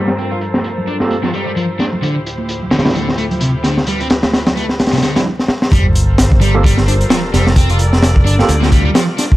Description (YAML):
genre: breakbeat, breaks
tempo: 130 BPM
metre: 4/4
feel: swing 57% on 16ths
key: G dorian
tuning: A4 = 441 Hz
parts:
  - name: warm chamber string section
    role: sustained chords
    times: 0.0-9.4 s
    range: D2 to D5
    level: -22 LUFS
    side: left 1 dB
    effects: sidechain pumping
  - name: overdriven semi-hollow guitar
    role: riff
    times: 0.0-9.2 s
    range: C3 to F4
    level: -19 LUFS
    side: equal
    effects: tube saturation, vintage 12-bit sampler grit, low-pass filter, tape echo
  - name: crunchy breakbeat drum kit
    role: drums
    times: 0.1-9.4 s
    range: hi-hat, kick drum, snare drum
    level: -14 LUFS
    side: equal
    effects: low-pass filter on kick, low-pass filter on hats, low-pass filter on snare, low-pass filter on room
  - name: congas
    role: percussion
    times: 0.5-4.9 s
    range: none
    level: -25 LUFS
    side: right 2 dB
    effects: none
  - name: overdriven tine electric piano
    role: stabs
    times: 1.0-8.6 s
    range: F3 to A4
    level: -20 LUFS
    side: right 3 dB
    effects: medium tremolo, vintage 12-bit sampler grit, tape echo
  - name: modern bright picked electric bass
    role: bass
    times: 5.7-8.9 s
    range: F1 to D2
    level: -13 LUFS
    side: equal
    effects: none
  - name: sub drop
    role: sound effects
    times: 5.8-7.6 s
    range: none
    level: -19 LUFS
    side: equal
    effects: none
room: light reverb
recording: vinyl crackle, low-pass filter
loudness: -11 LUFS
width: side -16 dB against mid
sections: 0.0-5.7 A section; 5.7-9.4 B section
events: stop 5.3-5.7; drum fill 5.4-5.7; drop 5.7-9.4; impact 5.7-7.6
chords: 0.0 Gm11; 2.0 Dm11; 5.7 Gm11